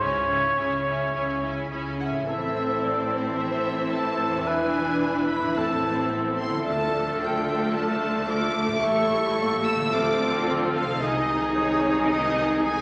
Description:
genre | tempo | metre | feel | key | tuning
classical | 110 BPM | 4/4 | straight | A minor | A4 = 440 Hz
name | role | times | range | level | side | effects
warm symphonic violin section | melody | 0.0-12.8 s | C#5 to E6 | -34 LUFS | equal | none
warm cor anglais | second line | 0.0-12.8 s | G#4 to C#5 | -30 LUFS | equal | none
warm symphonic violin section | second line | 0.0-12.8 s | D4 to C5 | -36 LUFS | equal | none
clear symphonic viola section | accompaniment | 0.0-12.8 s | D#3 to D#4 | -32 LUFS | equal | none
concert harp | arpeggios | 0.0-12.8 s | E2 to E5 | -34 LUFS | equal | none
rich symphonic cello section | bass | 0.0-12.8 s | E2 to D3 | -37 LUFS | equal | none
rich symphonic double bass section | bass | 0.0-12.8 s | E1 to D2 | -41 LUFS | equal | none
mellow clarinet | second line | 2.3-12.8 s | A3 to D#4 | -34 LUFS | equal | none
silver concert flute | second line | 2.3-12.8 s | D#6 to F6 | -38 LUFS | equal | none
dark French horn section | sustained chords | 2.3-12.8 s | G#3 to G4 | -33 LUFS | equal | none
room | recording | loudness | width
wet scoring stage reverb, RT60 1.7 s | none | -25 LUFS | mono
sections
0.0-2.3 A section; 2.3-12.8 B section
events
none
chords
0.0 C#m; 2.3 Am; 4.5 E7; 5.6 Am; 6.7 Dm; 8.8 A7; 9.9 Dm7; 11.0 G#/B#

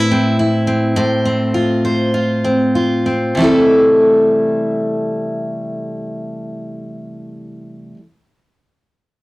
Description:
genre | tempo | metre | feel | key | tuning
pop | 94-108 BPM | 4/4 | swing 55% on 16ths | C major | A4 = 440 Hz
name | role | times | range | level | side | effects
picked steel-string acoustic guitar | accompaniment | 0.0-8.0 s | A2 to C5 | -14 LUFS | equal | none
room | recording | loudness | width
moderate small room reverb, RT60 0.5 s | worn, warbling old tape, cassette tape, warbly pitch drift | -13 LUFS | side -20 dB against mid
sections
0.0-3.4 A section; 3.4-8.5 B section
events
slowing down 0.0-3.4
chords
0.0 Amadd9; 1.0 F/A; 3.4 C6

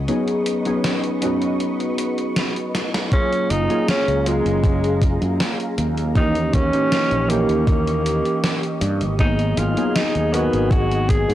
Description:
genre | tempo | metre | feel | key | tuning
vaporwave | 79 BPM | 4/4 | straight | F# major | A4 = 440 Hz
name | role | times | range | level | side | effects
soft string machine | sustained chords | 0.0-11.3 s | G4 to C#6 | -31 LUFS | equal | ensemble chorus
fretless electric bass | bass | 0.0-11.3 s | F#1 to G#2 | -22 LUFS | equal | tube saturation, lush chorus
warbly lo-fi synth keys | accompaniment | 0.1-11.3 s | E3 to A#4 | -22 LUFS | equal | lush chorus, tape echo
gated 80s digital drum machine | drums | 0.1-11.3 s | hi-hat, snare drum | -25 LUFS | equal | gated reverb, gated reverb snare
breathy tenor saxophone | melody | 3.1-11.3 s | G#3 to G#4 | -23 LUFS | equal | tape echo
electronic kick drum | drums | 3.1-11.2 s | none | -18 LUFS | equal | none
room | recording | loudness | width
little or no reverb | dry, gritty hardware recording, transformer saturation, cassette tape | -17 LUFS | side -13 dB against mid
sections
0.0-11.3 A section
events
break 0.1-3.1; drum fill 2.7-3.1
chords
0.0 C#9sus4; 3.1 F#maj9; 6.2 D#7b9; 9.2 G#m7

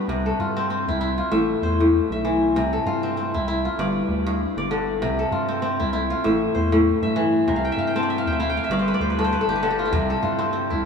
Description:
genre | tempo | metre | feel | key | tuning
west african traditional, West African string and xylophone music | 98 BPM | 4/4 | swing 55% on 16ths | C major | A4 = 440 Hz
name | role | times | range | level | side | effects
kora | arpeggios | 0.0-10.9 s | G2 to A5 | -20 LUFS | left 1 dB | none
rubbery square bass | bass | 0.1-10.9 s | G1 to G2 | -28 LUFS | equal | none
calabash | percussion | 9.9-10.8 s | none | -31 LUFS | right 2 dB | none
room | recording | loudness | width
wet cathedral reverb, RT60 6.3 s | in a vast, echoing space, small room ambience | -20 LUFS | side -6 dB against mid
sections
0.1-10.9 A section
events
kora fill 7.5-9.9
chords
0.1 C; 1.3 Am; 2.6 C; 3.8 G5; 5.0 C; 6.2 Am; 7.5 C; 8.7 G5; 9.9 C

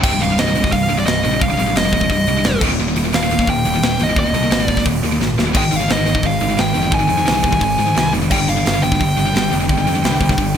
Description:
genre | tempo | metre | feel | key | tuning
heavy metal | 174 BPM | 4/4 | straight | C minor | A4 = 439 Hz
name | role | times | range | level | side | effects
dark smooth lead guitar | melody | 0.0-10.6 s | D5 to Ab5 | -20 LUFS | left 1 dB | overdrive, ping-pong delay
heavy high-gain guitar | riff | 0.0-10.6 s | C2 to Ab3 | -21 LUFS | right 8 dB | distortion
tight distorted guitar | riff | 0.0-10.6 s | C2 to Ab3 | -21 LUFS | left 11 dB | distortion
fuzz picked electric bass | bass | 0.0-10.5 s | C1 to Ab2 | -21 LUFS | equal | overdrive
tight metal drum kit | drums | 0.0-10.5 s | crash cymbal, hi-hat, kick drum, snare drum | -20 LUFS | right 1 dB | gated reverb
room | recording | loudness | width
light reverb, studio ambience | bright 1980s-style digital production | -14 LUFS | side -8 dB against mid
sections
0.0-10.6 A section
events
drum fill 5.2-5.6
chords
0.0 Cm; 2.6 Eb5; 5.6 Ab; 8.3 G5

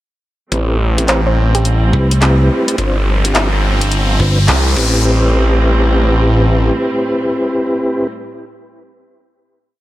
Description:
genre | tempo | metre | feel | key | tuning
glitch hop | 106 BPM | 4/4 | swing 64% on 16ths | A minor | A4 = 445 Hz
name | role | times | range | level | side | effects
clear studio string section | sustained chords | 0.5-8.1 s | A2 to C4 | -22 LUFS | right 2 dB | sidechain pumping, low-pass filter
mellow tonewheel organ | stabs | 0.5-8.1 s | C4 to C5 | -17 LUFS | equal | chorus vibrato, vintage 12-bit sampler grit, sidechain pumping, low-pass filter, tape echo
phased detuned saw bass | bass | 0.5-6.7 s | G1 to C2 | -13 LUFS | equal | phaser, tube saturation
drum and bass drum kit | drums | 0.5-4.9 s | crash cymbal, handclaps, hi-hat, rim click | -19 LUFS | equal | none
electronic kick drum | drums | 0.5-4.9 s | none | -24 LUFS | equal | high-pass filter on kick, high-pass filter on room
riser | sound effects | 2.4-5.0 s | none | -23 LUFS | left 2 dB | none
woody wave-folded pluck | melody | 1.1-3.9 s | E4 to C5 | -22 LUFS | right 2 dB | chorus, tape echo
vintage slap bass | bass | 1.9-4.5 s | G1 to C2 | -11 LUFS | equal | none
room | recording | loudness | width
little or no reverb | none | -11 LUFS | side -15 dB against mid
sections
0.5-5.0 build; 5.0-7.3 final hit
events
build-up 0.5-5.0; filter sweep on tonewheel organ 0.5-5.0; riser 2.4-5.0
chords
0.5 Am7; 2.8 G7sus4; 4.8 Am7

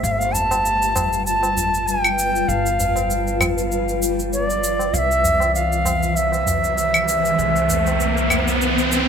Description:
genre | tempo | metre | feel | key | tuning
organic downtempo | 98 BPM | 4/4 | swing 55% on 16ths | unclear | A4 = 440 Hz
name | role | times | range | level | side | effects
bright reedy bansuri | melody | 0.0-9.1 s | D5 to A5 | -20 LUFS | equal | ping-pong delay
granular cloud pad | sustained chords | 0.0-9.1 s | E3 to C5 | -25 LUFS | equal | built-in reverb, lush chorus
upright bass | bass | 0.0-9.1 s | G1 to C2 | -26 LUFS | equal | none
cabasa and claves | drums | 0.0-9.1 s | none | -24 LUFS | equal | none
tabla | percussion | 0.3-8.4 s | none | -28 LUFS | right 2 dB | none
riser | sound effects | 6.5-9.1 s | none | -23 LUFS | equal | none
room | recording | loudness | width
wet plate reverb, RT60 3.2 s | bright 1980s-style digital production | -17 LUFS | side -7 dB against mid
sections
0.0-9.1 A section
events
riser 6.5-9.1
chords
0.0 G7; 4.9 Cmaj7

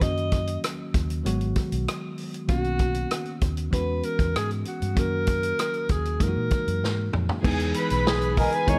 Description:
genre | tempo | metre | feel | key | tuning
lush 1970s-style soul | 97 BPM | 4/4 | straight | unclear | A4 = 440 Hz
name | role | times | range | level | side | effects
warm alto saxophone | melody | 0.0-8.8 s | F#4 to D#5 | -31 LUFS | equal | none
mellow tine electric piano | accompaniment | 0.0-8.8 s | D#3 to B4 | -33 LUFS | equal | none
vintage muted fingered electric bass | bass | 0.0-8.8 s | G#1 to A#2 | -30 LUFS | equal | none
vintage drum kit | drums | 0.0-8.8 s | crash cymbal, hi-hat, kick drum, rim click, snare drum, toms | -29 LUFS | equal | none
dark studio string section | second line | 7.4-8.8 s | G#4 to B5 | -29 LUFS | equal | none
muted trombone section | stabs | 8.4-8.8 s | B2 to D#4 | -31 LUFS | equal | slapback echo
room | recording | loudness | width
light reverb, small room ambience | none | -26 LUFS | mono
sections
0.0-7.4 A section; 7.4-8.8 B section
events
drum fill 6.8-7.4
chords
0.0 D#m7/F#; 1.3 G#m7; 2.5 Bmaj9; 3.7 E69; 5.0 D#m7/F#; 6.2 F#13; 7.4 Emaj7

